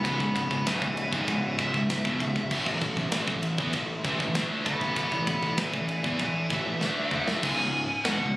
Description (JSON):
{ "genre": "heavy metal", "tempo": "97 BPM", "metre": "4/4", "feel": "straight", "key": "C# phrygian", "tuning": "A4 = 438 Hz", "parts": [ { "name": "high-gain lead guitar", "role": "melody", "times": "0.0-8.4 s", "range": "E5 to B5", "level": "-31 LUFS", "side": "equal", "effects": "distortion" }, { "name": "warm studio string section", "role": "sustained chords", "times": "0.0-7.4 s", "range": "A2 to E5", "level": "-40 LUFS", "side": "equal", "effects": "none" }, { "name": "scooped high-gain guitar", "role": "riff", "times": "0.0-8.4 s", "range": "C#2 to D4", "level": "-33 LUFS", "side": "left 3 dB", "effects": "distortion" }, { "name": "scooped high-gain guitar", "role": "riff", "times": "0.0-8.4 s", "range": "C#2 to D4", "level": "-33 LUFS", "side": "right 4 dB", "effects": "distortion" }, { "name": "fuzz picked electric bass", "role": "bass", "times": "0.0-8.4 s", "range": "C#1 to E2", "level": "-32 LUFS", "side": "equal", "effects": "overdrive" }, { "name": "tight metal drum kit", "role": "drums", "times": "0.0-8.2 s", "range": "crash cymbal, kick drum, ride cymbal, snare drum, toms", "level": "-31 LUFS", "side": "equal", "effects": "none" } ], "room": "light reverb", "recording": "recorded on a phone in the room, club reverb, compression", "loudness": "-25 LUFS", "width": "side -18 dB against mid", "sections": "0.0-7.4 A section", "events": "lead electric guitar solo 0.0-7.4; drum fill 6.8-7.4", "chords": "0.0 C#m; 2.5 A5; 7.4 C#m", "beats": "| 0.05 0.66 1.28 1.89 | 2.51 3.12 3.74 4.36 | 4.97 5.59 6.20 6.82 | 7.44 8.05" }